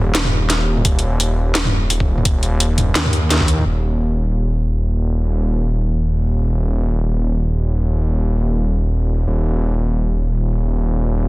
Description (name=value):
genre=half-time drum and bass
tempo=171 BPM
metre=4/4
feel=swing 58% on 16ths, half-time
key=unclear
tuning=A4 = 440 Hz
part: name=dark detuned saw bass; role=bass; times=0.0-11.3 s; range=Eb1 to Eb2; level=-16 LUFS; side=equal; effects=tube saturation
part: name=drum and bass drum kit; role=drums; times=0.1-3.6 s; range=hi-hat, snare drum, toms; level=-18 LUFS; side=equal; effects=low-pass filter on toms, low-pass filter on hats, low-pass filter on snare, low-pass filter on room
part: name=electronic kick drum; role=drums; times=0.8-3.5 s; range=none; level=-18 LUFS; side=equal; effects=none
room=little or no reverb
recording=dense, heavily limited modern master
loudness=-16 LUFS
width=side -21 dB against mid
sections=0.0-3.7 A section; 3.7-11.3 B section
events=drop 0.0-3.7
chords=none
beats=0.15 0.50 | 0.85 1.20 1.55 1.90 | 2.25 2.60 2.95 3.31 | 3.66 4.01 4.36 4.71 | 5.06 5.41 5.76 6.11 | 6.46 6.81 7.17 7.51 | 7.87 8.22 8.57 8.92 | 9.27 9.62 9.97 10.32 | 10.67 11.02